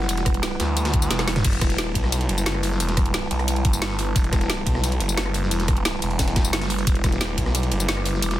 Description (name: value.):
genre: dark technical drum and bass.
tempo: 177 BPM.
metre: 4/4.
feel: straight.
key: E minor.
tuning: A4 = 444 Hz.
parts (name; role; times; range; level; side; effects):
dark analog pad; sustained chords; 0.0-8.4 s; G3 to D6; -29 LUFS; right 2 dB; chorus, sidechain pumping.
snarling distorted saw bass; bass; 0.0-8.4 s; E1 to D2; -24 LUFS; equal; distortion, overdrive.
breakbeat sampler-style drum kit; drums; 0.0-8.4 s; ride cymbal, snare drum; -32 LUFS; right 1 dB; overdrive, high-pass filter on cymbals, high-pass filter on snare, high-pass filter on room.
drum and bass drum kit; drums; 0.1-8.4 s; crash cymbal, hi-hat, rim click, snare drum, tambourine, toms; -26 LUFS; equal; none.
electronic kick drum; drums; 0.3-7.4 s; none; -21 LUFS; equal; none.
room: little or no reverb.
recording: dense, heavily limited modern master.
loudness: -20 LUFS.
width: side -14 dB against mid.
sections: 0.0-8.4 A section.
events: drum fill 1.1-1.4.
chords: 0.0 Em.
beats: | 0.09 0.43 0.77 1.11 | 1.45 1.78 2.12 2.46 | 2.80 3.14 3.48 3.82 | 4.16 4.50 4.84 5.17 | 5.51 5.85 6.19 6.53 | 6.87 7.21 7.55 7.89 | 8.22.